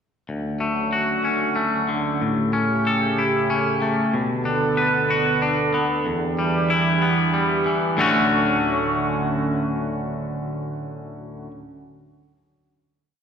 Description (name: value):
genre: post-rock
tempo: 62 BPM (dotted quarters)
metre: 6/8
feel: straight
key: D major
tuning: A4 = 443 Hz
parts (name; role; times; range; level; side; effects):
- chorused pulse-width pad; sustained chords; 0.3-11.4 s; C#3 to A4; -25 LUFS; right 2 dB; none
- twangy electric guitar; arpeggios; 0.3-11.5 s; D2 to B4; -21 LUFS; left 2 dB; none
room: wet recital hall reverb, RT60 1.5 s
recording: recorded in a church or concert hall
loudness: -19 LUFS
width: side -7 dB against mid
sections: 0.3-8.0 A section; 8.0-11.8 final chord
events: none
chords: 0.3 Dmaj7; 2.2 A7; 4.1 Bm7; 6.0 Em7; 8.0 Dmaj7